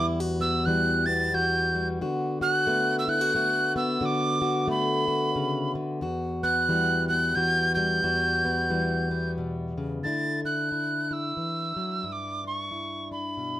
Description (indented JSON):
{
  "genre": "acoustic folk duo or small band",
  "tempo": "90 BPM",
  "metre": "3/4",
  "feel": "swing 60% on 8ths",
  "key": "D major",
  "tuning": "A4 = 442 Hz",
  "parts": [
    { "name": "breathy bright tin whistle", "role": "melody", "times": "0.0-13.6 s", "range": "B5 to A6", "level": "-26 LUFS", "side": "right 1 dB", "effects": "none" },
    { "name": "fingerpicked plugged-in steel-string acoustic guitar", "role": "accompaniment", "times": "0.0-13.6 s", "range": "E2 to F#4", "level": "-27 LUFS", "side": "left 1 dB", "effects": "none" }
  ],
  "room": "moderate studio reverb, RT60 0.7 s",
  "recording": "dark, warm production, faint mains hum",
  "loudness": "-24 LUFS",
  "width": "side -13 dB against mid",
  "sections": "0.0-10.0 A section; 10.0-13.6 B section",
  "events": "none",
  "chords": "0.0 Emadd9; 2.0 D6; 6.0 Emadd9; 10.0 Dsus2; 12.0 G6",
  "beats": "| 0.00 0.67 1.34 | 2.01 2.68 3.34 | 4.01 4.68 5.35 | 6.02 6.68 7.35 | 8.02 8.69 9.36 | 10.03 10.70 11.37 | 12.04 12.72 13.39"
}